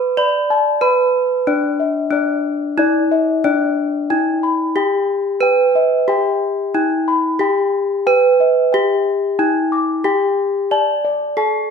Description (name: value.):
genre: gamelan.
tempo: 91 BPM.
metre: 4/4.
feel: straight.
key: unclear.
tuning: A4 = 440 Hz.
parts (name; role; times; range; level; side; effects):
gamelan-type bronze metallophone; melody; 0.0-11.7 s; D4 to D5; -16 LUFS; right 1 dB; none.
gamelan-type bossed gongs; arpeggios; 0.2-11.7 s; D5 to D6; -20 LUFS; left 5 dB; none.
room: wet recital hall reverb, RT60 1.2 s.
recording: recorded in a church or concert hall.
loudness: -14 LUFS.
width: side -6 dB against mid.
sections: 0.0-1.5 A section; 1.5-11.7 B section.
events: none.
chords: none.